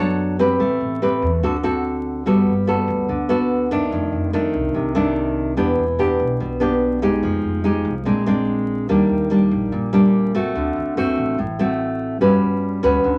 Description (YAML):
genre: bossa nova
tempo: 145 BPM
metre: 4/4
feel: straight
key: unclear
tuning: A4 = 440 Hz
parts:
  - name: nylon-string guitar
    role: accompaniment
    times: 0.0-13.2 s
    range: F2 to C#5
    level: -20 LUFS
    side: equal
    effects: none
  - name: upright bass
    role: bass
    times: 0.0-13.2 s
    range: E1 to F#2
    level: -30 LUFS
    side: equal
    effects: none
room: moderate studio reverb, RT60 0.6 s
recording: vinyl crackle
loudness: -20 LUFS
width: mono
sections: 0.0-13.2 A section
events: none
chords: 0.0 Bm9; 0.6 Am9; 1.4 D7; 2.3 Gmaj9; 3.9 F6; 5.6 Em7; 7.2 Fm9; 8.1 Bb9; 8.9 Ebmaj7; 10.5 D7; 12.2 Gmaj7#11